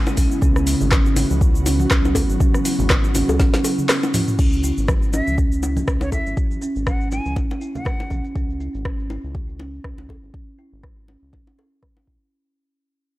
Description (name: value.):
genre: afro house.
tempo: 121 BPM.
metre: 4/4.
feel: swing 56% on 16ths.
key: C# minor.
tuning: A4 = 440 Hz.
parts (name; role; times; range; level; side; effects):
ethereal airy pad; sustained chords; 0.0-4.3 s; C#3 to F#4; -27 LUFS; right 1 dB; ensemble chorus, built-in reverb, vintage 12-bit sampler grit, sidechain pumping.
kalimba; arpeggios; 0.0-12.2 s; C#4 to F#4; -25 LUFS; right 1 dB; sidechain pumping, low-pass filter, analog delay.
afro-pop drum kit; drums; 0.1-12.3 s; cabasa, crash cymbal, handclaps, hi-hat, rim click, snare drum, toms; -24 LUFS; equal; low-pass filter on snare, low-pass filter on hats, low-pass filter on perc, low-pass filter on toms, low-pass filter on cymbals.
bongos; percussion; 0.1-12.1 s; none; -28 LUFS; left 4 dB; none.
round analog bass; bass; 0.2-12.2 s; G#1 to C#2; -24 LUFS; equal; sidechain pumping.
electronic kick drum; drums; 0.2-12.2 s; none; -20 LUFS; equal; none.
congas; percussion; 0.2-8.3 s; none; -30 LUFS; right 2 dB; none.
bright silver concert flute; melody; 5.1-8.2 s; C#5 to G#5; -32 LUFS; equal; analog delay.
room: studio reverb.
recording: dry, gritty hardware recording.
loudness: -17 LUFS.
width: side -17 dB against mid.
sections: 0.0-4.4 A section; 4.4-12.3 B section.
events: drop 0.0-4.4; drum fill 3.4-4.4; fade-out 4.4-12.3; filter sweep on drum 4.4-12.3.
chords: 0.0 C#m7; 4.4 C#m.